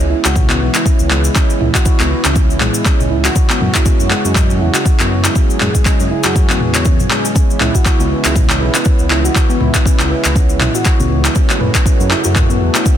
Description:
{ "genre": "afro house", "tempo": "120 BPM", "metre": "4/4", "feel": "swing 57% on 16ths", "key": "C# minor pentatonic", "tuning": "A4 = 440 Hz", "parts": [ { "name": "warm analog pad", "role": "sustained chords", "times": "0.0-13.0 s", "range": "C#3 to G#4", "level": "-22 LUFS", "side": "right 2 dB", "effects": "chorus, sidechain pumping" }, { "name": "dark detuned saw bass", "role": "bass", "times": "0.0-12.7 s", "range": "B1 to F#2", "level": "-17 LUFS", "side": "equal", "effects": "sidechain pumping" }, { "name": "cabasa", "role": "percussion", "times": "0.0-13.0 s", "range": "none", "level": "-24 LUFS", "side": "left 4 dB", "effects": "none" }, { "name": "handpan", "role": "arpeggios", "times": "0.1-12.9 s", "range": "G#3 to C#5", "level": "-19 LUFS", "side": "equal", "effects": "sidechain pumping, ping-pong delay" }, { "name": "afro-pop drum kit", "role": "drums", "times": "0.2-12.8 s", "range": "handclaps, toms", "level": "-17 LUFS", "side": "equal", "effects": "overdrive" }, { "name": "electronic kick drum", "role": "drums", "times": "0.4-13.0 s", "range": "none", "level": "-13 LUFS", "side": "equal", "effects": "overdrive" } ], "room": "digital ambience", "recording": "dense, heavily limited modern master", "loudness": "-11 LUFS", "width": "side -10 dB against mid", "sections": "0.0-13.0 A section", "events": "none", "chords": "0.0 C#m7; 3.4 F#sus2; 7.4 C#m7; 11.4 F#madd9", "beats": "0.36 0.86 | 1.36 1.86 2.36 2.86 | 3.36 3.86 4.36 4.86 | 5.36 5.86 6.36 6.86 | 7.36 7.86 8.36 8.86 | 9.36 9.86 10.36 10.86 | 11.36 11.86 12.36 12.86" }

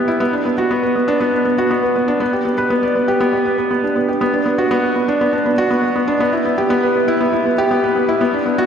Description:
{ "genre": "electronica", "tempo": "120 BPM", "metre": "4/4", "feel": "straight", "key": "unclear", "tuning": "A4 = 439 Hz", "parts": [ { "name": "felt-muted upright piano", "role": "solo", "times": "0.0-8.7 s", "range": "B3 to D5", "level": "-14 LUFS", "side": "equal", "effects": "analog delay" } ], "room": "wet lush hall reverb, RT60 3.3 s", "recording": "dreamy mix soaked in reverb", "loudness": "-14 LUFS", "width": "side -7 dB against mid", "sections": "0.0-8.7 A section", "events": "build-up 0.0-8.7", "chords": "none", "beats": "| 0.21 0.71 1.21 1.71 | 2.21 2.71 3.21 3.71 | 4.21 4.71 5.21 5.71 | 6.21 6.71 7.21 7.71 | 8.21" }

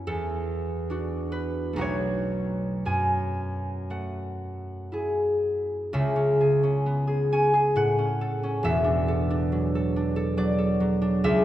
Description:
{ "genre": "classical, solo harp piece", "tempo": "54-73 BPM", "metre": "3/4", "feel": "rubato", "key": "unclear", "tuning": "A4 = 443 Hz", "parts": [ { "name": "concert harp", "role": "solo", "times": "0.0-11.4 s", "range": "E1 to G#5", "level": "-23 LUFS", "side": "equal", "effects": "none" } ], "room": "wet church reverb, RT60 3.0 s", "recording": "recorded in a church or concert hall", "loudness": "-23 LUFS", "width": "side -13 dB against mid", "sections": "0.0-5.9 A section; 5.9-11.4 B section", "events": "none", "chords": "0.1 E9sus4; 1.8 B7sus2; 2.9 F#m11; 5.9 C#m7; 7.8 Aadd9; 8.6 E9sus4", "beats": "| 0.08 0.91 1.78 | 2.86 3.90 4.91 | 5.93 6.86 7.75 | 8.63 9.50 10.35 | 11.22" }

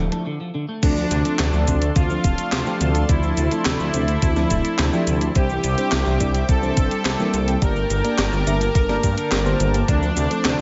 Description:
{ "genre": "synthwave", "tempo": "106 BPM", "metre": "4/4", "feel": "straight", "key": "D minor", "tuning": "A4 = 441 Hz", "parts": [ { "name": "chorused pulse-width pad", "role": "sustained chords", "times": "0.0-10.6 s", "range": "F3 to D6", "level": "-34 LUFS", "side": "equal", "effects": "sidechain pumping" }, { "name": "clean electric guitar", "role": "arpeggios", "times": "0.0-10.6 s", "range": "C3 to Bb3", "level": "-31 LUFS", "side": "equal", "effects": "analog chorus, delay" }, { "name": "mellow FM electric piano", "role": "stabs", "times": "0.0-10.6 s", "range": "F3 to A5", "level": "-29 LUFS", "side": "equal", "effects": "chorus, phaser" }, { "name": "dark detuned saw bass", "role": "bass", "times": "0.0-10.6 s", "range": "D1 to G2", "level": "-25 LUFS", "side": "equal", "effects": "tube saturation" }, { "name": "gated 80s digital drum machine", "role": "drums", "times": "0.1-10.6 s", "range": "crash cymbal, handclaps, hi-hat, shaker, snare drum", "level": "-28 LUFS", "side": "equal", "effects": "gated reverb, gated reverb snare" }, { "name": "soft supersaw", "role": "melody", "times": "0.8-10.6 s", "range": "D4 to Bb4", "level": "-27 LUFS", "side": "equal", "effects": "delay" }, { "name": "electronic kick drum", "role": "drums", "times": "0.8-10.0 s", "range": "none", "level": "-22 LUFS", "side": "equal", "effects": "none" } ], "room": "little or no reverb", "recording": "nothing above 7.8 kHz", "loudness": "-20 LUFS", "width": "mono", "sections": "0.8-10.6 A section", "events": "break 0.3-0.8", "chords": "0.0 Dmadd9; 0.8 Dm7; 5.4 Cadd9; 7.6 Gmadd9; 9.9 Dm7", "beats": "0.26 | 0.83 1.39 1.96 2.52 | 3.09 3.66 4.22 4.79 | 5.36 5.92 6.49 7.05 | 7.62 8.19 8.75 9.32 | 9.88 10.45" }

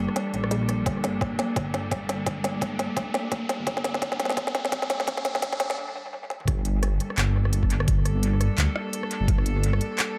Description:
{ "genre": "half-time drum and bass", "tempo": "171 BPM", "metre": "4/4", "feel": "swing 57% on 16ths, half-time", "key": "G minor", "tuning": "A4 = 440 Hz", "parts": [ { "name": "rich studio cello section", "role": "sustained chords", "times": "0.0-10.2 s", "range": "G3 to A4", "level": "-34 LUFS", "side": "equal", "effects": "sidechain pumping, low-pass filter" }, { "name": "dark detuned saw bass", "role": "bass", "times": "0.0-9.8 s", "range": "G1 to D2", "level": "-28 LUFS", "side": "equal", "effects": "none" }, { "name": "riser", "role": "sound effects", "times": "0.0-5.8 s", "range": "none", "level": "-40 LUFS", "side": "equal", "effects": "none" }, { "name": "organic electronic drum kit", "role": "drums", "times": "0.1-10.1 s", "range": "handclaps, hi-hat, rim click, snare drum, toms", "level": "-31 LUFS", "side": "equal", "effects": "small room ambience, dub echo" }, { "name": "electronic kick drum", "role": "drums", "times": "0.9-9.4 s", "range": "none", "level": "-29 LUFS", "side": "equal", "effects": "overdrive, small room ambience" } ], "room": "moderate spring reverb, RT60 1.4 s", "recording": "echo-heavy mix, high-pass filter", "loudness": "-26 LUFS", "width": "mono", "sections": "0.0-6.5 A section; 6.5-10.2 B section", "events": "build-up 0.0-6.5; drum fill 0.0-5.8, 6.3; riser 0.0-5.8; filter sweep on cello section 0.0-6.5; filter sweep 0.0-6.5; break 5.8-6.5; drop 6.5-10.2", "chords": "0.0 Gmadd9", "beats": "0.16 0.51 | 0.86 1.21 1.56 1.91 | 2.27 2.62 2.97 3.32 | 3.67 4.02 4.37 4.72 | 5.07 5.42 5.77 6.12 | 6.48 6.83 7.18 7.53 | 7.88 8.23 8.58 8.93 | 9.28 9.63 9.98" }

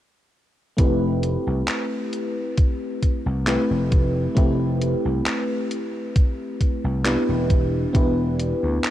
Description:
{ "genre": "vaporwave", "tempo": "67 BPM", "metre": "4/4", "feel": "straight", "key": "F lydian", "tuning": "A4 = 440 Hz", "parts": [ { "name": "mellow FM electric piano", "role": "accompaniment", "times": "0.8-8.9 s", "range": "A3 to B4", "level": "-24 LUFS", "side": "equal", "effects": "wide subtle chorus, analog delay" }, { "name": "vintage slap bass", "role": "bass", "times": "0.8-8.8 s", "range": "E1 to D2", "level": "-24 LUFS", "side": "equal", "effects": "none" }, { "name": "electronic kick drum", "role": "drums", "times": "0.8-8.1 s", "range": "none", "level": "-18 LUFS", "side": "equal", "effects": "none" }, { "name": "gated 80s digital drum machine", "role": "drums", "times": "0.8-8.9 s", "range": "handclaps, hi-hat", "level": "-29 LUFS", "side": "equal", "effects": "gated reverb" } ], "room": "digital ambience", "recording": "none", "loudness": "-20 LUFS", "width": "side -13 dB against mid", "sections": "0.8-8.9 A section", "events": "none", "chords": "0.8 Fmaj9#11; 7.5 Em7", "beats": "| 0.79 1.68 2.58 3.47 | 4.37 5.26 6.16 7.05 | 7.95 8.85" }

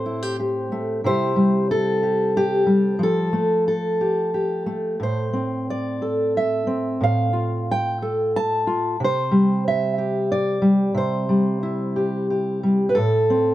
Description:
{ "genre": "folk, solo fingerstyle acoustic guitar", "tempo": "91 BPM", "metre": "3/4", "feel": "rubato", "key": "C major", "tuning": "A4 = 441 Hz", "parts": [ { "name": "fingerpicked steel-string acoustic guitar", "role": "solo", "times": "0.0-13.5 s", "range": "A2 to A5", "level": "-19 LUFS", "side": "equal", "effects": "none" } ], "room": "light reverb", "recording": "none", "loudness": "-19 LUFS", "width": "side -14 dB against mid", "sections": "0.0-13.0 A section", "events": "none", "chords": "0.0 Am7; 1.0 C; 3.0 Fadd9; 5.0 Am; 7.0 Fadd9/A; 9.0 Cadd9; 10.9 C; 13.0 Am", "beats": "0.38 | 1.04 1.69 2.34 | 3.00 3.67 4.33 | 5.01 5.68 6.35 | 7.02 7.68 8.34 | 8.99 9.64 10.29 | 10.95 11.61 12.29 | 12.96" }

